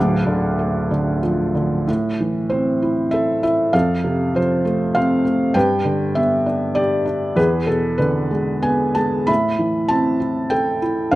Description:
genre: classical, lyrical solo piano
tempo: 97 BPM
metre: 3/4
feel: uneven beats, rubato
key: A minor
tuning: A4 = 441 Hz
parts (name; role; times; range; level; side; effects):
- felt-muted upright piano; solo; 0.0-11.2 s; D1 to D6; -16 LUFS; equal; none
room: light reverb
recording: close, detailed microphones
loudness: -17 LUFS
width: side -17 dB against mid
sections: 0.0-1.9 A section; 1.9-11.2 B section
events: none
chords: 0.0 Dm; 1.9 Am; 3.7 F; 5.6 G; 7.4 E7; 9.3 Am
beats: 0.59 1.23 | 1.88 2.52 3.13 | 3.74 4.35 4.96 | 5.55 6.16 6.77 | 7.38 8.00 8.65 | 9.29 9.91 10.53 | 11.13

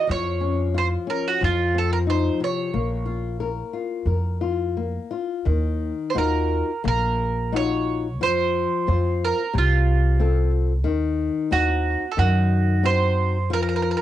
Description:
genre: fado-style ballad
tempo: 90 BPM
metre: 4/4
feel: rubato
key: unclear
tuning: A4 = 439 Hz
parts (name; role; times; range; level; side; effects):
- bowl-back mandolin; melody; 0.0-14.0 s; F4 to Db5; -24 LUFS; right 6 dB; cassette tape
- flamenco guitar; accompaniment; 0.0-14.0 s; C3 to C5; -26 LUFS; left 7 dB; cassette tape
- upright bass; bass; 0.1-13.9 s; Bb1 to Gb2; -22 LUFS; equal; tube saturation
room: moderate studio reverb, RT60 0.6 s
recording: home recording on cassette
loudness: -20 LUFS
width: side -12 dB against mid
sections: 0.0-5.5 A section; 5.5-14.0 B section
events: none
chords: 0.1 Gbmaj7(no3)/F (rootless); 1.4 F5; 2.7 Bbm; 5.5 Ebmadd9; 8.2 F; 10.8 Cdim/Eb; 13.5 Fsus4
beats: | 0.09 0.75 1.42 2.08 | 2.74 3.39 4.06 4.76 | 5.46 6.15 6.84 7.53 | 8.20 8.87 9.54 10.20 | 10.85 11.51 12.16 12.83 | 13.50

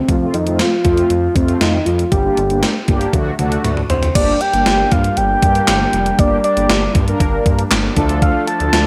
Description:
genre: synth-pop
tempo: 118 BPM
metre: 4/4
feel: straight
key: G minor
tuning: A4 = 440 Hz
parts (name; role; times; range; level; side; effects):
- soft octave-layered synth lead; melody; 0.0-8.9 s; C4 to A5; -20 LUFS; equal; chorus
- mellow synth brass; accompaniment; 0.1-8.9 s; A3 to Bb4; -24 LUFS; equal; chorus
- smooth gliding synth bass; bass; 0.1-8.9 s; F1 to G2; -22 LUFS; equal; none
- gated 80s digital drum machine; drums; 0.1-8.8 s; crash cymbal, handclaps, hi-hat, kick drum, snare drum, toms; -20 LUFS; equal; gated reverb, gated reverb snare, overdrive
- brassy analog pad; sustained chords; 4.2-8.9 s; F3 to D4; -25 LUFS; equal; chorus
room: light reverb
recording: none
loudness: -15 LUFS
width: mono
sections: 0.0-4.2 A section; 4.2-8.9 B section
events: drum fill 3.1-4.2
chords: 0.1 F; 2.1 Gm; 3.1 D; 4.2 Gm; 8.0 Dm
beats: | 0.09 0.59 1.10 1.61 | 2.12 2.63 3.14 3.65 | 4.15 4.66 5.17 5.68 | 6.19 6.70 7.21 7.71 | 8.22 8.73

